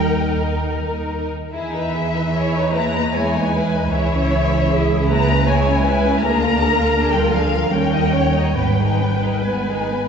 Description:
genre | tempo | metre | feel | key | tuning
classical, slow romantic movement for string orchestra | 77 BPM | 3/4 | uneven beats, rubato | G# minor | A4 = 440 Hz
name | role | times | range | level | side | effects
dark symphonic violin section | melody | 0.0-10.1 s | E5 to A#5 | -24 LUFS | left 6 dB | none
rich symphonic violin section | second line | 0.0-10.1 s | B3 to D#5 | -24 LUFS | left 1 dB | none
warm symphonic viola section | accompaniment | 0.0-10.1 s | G#4 to C#5 | -23 LUFS | right 1 dB | none
dark symphonic double bass section | bass | 0.0-10.1 s | G#1 to E2 | -21 LUFS | right 1 dB | none
rich symphonic cello section | bass | 0.0-10.1 s | E3 to A#3 | -23 LUFS | right 2 dB | none
room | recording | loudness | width
wet concert hall reverb, RT60 2.5 s | heard from further back in the room, nothing above 8.0 kHz | -16 LUFS | side -6 dB against mid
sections
0.0-10.1 A section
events
none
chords
0.0 D#; 1.5 Emaj7; 3.9 C#m; 6.2 A#7/D; 7.7 D#7; 8.6 G#m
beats
0.70 | 1.53 2.35 3.14 | 3.93 4.71 5.47 | 6.21 6.94 7.71 | 8.55 9.44

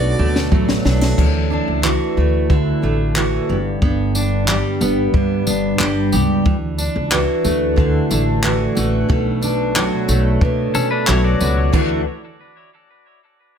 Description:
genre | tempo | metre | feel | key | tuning
acoustic pop | 91 BPM | 4/4 | straight | D major | A4 = 440 Hz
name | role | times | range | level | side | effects
clear harmonica | melody | 0.0-0.5 s | D5 | -30 LUFS | equal | ping-pong delay
fingerpicked steel-string acoustic guitar | accompaniment | 0.0-12.0 s | G2 to G4 | -19 LUFS | equal | double-tracked left and right
fingerpicked steel-string acoustic guitar | arpeggios | 0.0-12.0 s | E3 to G4 | -24 LUFS | right 8 dB | none
upright bass | bass | 0.0-12.0 s | G1 to B2 | -20 LUFS | equal | none
compact cocktail drum kit | drums | 0.4-11.9 s | crash cymbal, handclaps, kick drum, snare drum, tambourine | -20 LUFS | equal | none
pedal steel guitar | second line | 10.7-11.7 s | C#4 to D5 | -24 LUFS | left 5 dB | ping-pong delay
room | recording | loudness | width
light reverb | none | -15 LUFS | side -8 dB against mid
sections
0.0-1.2 A section; 1.2-11.7 B section; 11.7-13.6 C section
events
drum fill 0.0-1.2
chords
0.0 Bm7; 1.2 Dadd9; 3.5 G; 6.5 Dadd9; 9.1 Bm7; 11.7 Dadd9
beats
0.52 | 1.18 1.84 2.50 3.16 | 3.82 4.48 5.14 5.80 | 6.46 7.12 7.78 8.44 | 9.10 9.76 10.42 11.08 | 11.74

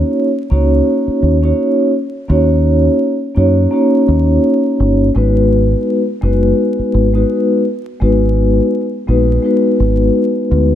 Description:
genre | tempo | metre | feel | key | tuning
hip hop | 84 BPM | 4/4 | swing 58% on 16ths | Eb minor | A4 = 440 Hz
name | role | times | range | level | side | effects
vibraphone with soft mallets | accompaniment | 0.0-10.8 s | Ab3 to Db5 | -13 LUFS | left 1 dB | high-pass filter, low-pass filter
deep dub fingered electric bass | bass | 0.5-10.8 s | Gb1 to Gb2 | -13 LUFS | equal | none
room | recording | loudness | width
moderate echo chamber reverb, RT60 1.6 s, studio ambience | dark, warm production, vinyl crackle | -11 LUFS | side -11 dB against mid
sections
0.0-10.8 A section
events
none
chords
0.0 Ebm7; 5.2 Abm7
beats
0.15 0.86 1.58 | 2.29 3.01 3.72 4.44 | 5.15 5.87 6.58 7.29 | 8.01 8.72 9.44 10.15

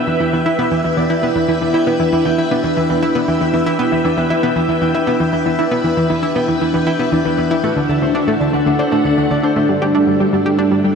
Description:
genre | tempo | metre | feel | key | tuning
ambient, sequencer-driven space music | 117 BPM | 4/4 | straight | E minor | A4 = 440 Hz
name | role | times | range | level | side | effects
string machine, full ensemble | sustained chords | 0.0-11.0 s | G3 to G5 | -17 LUFS | right 1 dB | ensemble chorus
concert harp | arpeggios | 0.0-11.0 s | D4 to A5 | -21 LUFS | left 2 dB | auto-pan, tape echo
analog pluck | riff | 0.1-11.0 s | D3 to G4 | -17 LUFS | equal | chorus, tape echo
room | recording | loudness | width
wet huge ambient reverb, RT60 7.9 s | dark, warm production | -13 LUFS | side -6 dB against mid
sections
0.0-9.7 A section; 9.7-11.0 B section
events
none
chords
0.0 Em7; 7.6 D7; 9.7 G5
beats
0.46 0.97 | 1.48 2.00 2.51 3.02 | 3.54 4.05 4.56 5.07 | 5.59 6.10 6.61 7.12 | 7.64 8.15 8.66 9.18 | 9.69 10.20 10.71

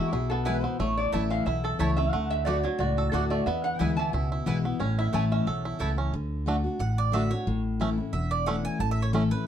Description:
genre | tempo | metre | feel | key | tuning
bluegrass | 180 BPM | 4/4 | swing 54% on 8ths | A major | A4 = 438 Hz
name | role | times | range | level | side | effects
lap resonator guitar | melody | 0.0-6.0 s | F#4 to A5 | -31 LUFS | right 1 dB | none
picked steel-string acoustic guitar | accompaniment | 0.0-9.5 s | E2 to F#4 | -29 LUFS | left 3 dB | none
bluegrass banjo | arpeggios | 0.0-9.2 s | E3 to A4 | -33 LUFS | right 3 dB | none
upright bass | bass | 0.1-9.3 s | E1 to E2 | -29 LUFS | equal | none
mandolin | stabs | 0.5-9.5 s | A3 to A5 | -33 LUFS | right 5 dB | none
room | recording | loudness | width
light reverb | dark, warm production | -25 LUFS | side -9 dB against mid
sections
0.0-6.1 A section; 6.1-9.5 B section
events
mandolin solo 6.1-9.5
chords
0.0 E; 0.8 A; 2.1 D; 3.5 E; 4.8 A; 6.1 D; 7.5 A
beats
0.13 0.46 | 0.80 1.13 1.46 1.80 | 2.13 2.46 2.80 3.13 | 3.46 3.80 4.13 4.47 | 4.80 5.13 5.47 5.80 | 6.13 6.47 6.80 7.14 | 7.47 7.80 8.14 8.47 | 8.81 9.14

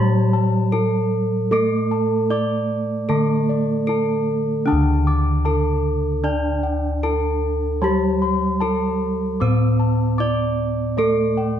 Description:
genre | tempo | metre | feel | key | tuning
gamelan | 76 BPM | 4/4 | straight | D slendro | A4 = 440 Hz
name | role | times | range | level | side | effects
gamelan-type bronze metallophone | melody | 0.0-11.6 s | D4 to D5 | -23 LUFS | right 1 dB | none
gamelan-type bronze metallophone | accompaniment | 0.0-11.6 s | D3 to D4 | -23 LUFS | right 3 dB | none
gamelan-type bossed gongs | arpeggios | 0.0-11.6 s | D5 to D6 | -29 LUFS | left 6 dB | none
gamelan-type bossed gongs | bass | 0.0-11.6 s | D2 to A4+25c | -22 LUFS | left 1 dB | none
room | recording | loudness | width
moderate recital hall reverb, RT60 1.5 s | dark, warm production | -18 LUFS | side -9 dB against mid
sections
0.0-11.6 A section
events
none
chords
none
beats
0.72 | 1.51 2.30 3.09 3.88 | 4.67 5.46 6.25 7.04 | 7.83 8.62 9.40 10.20 | 10.98

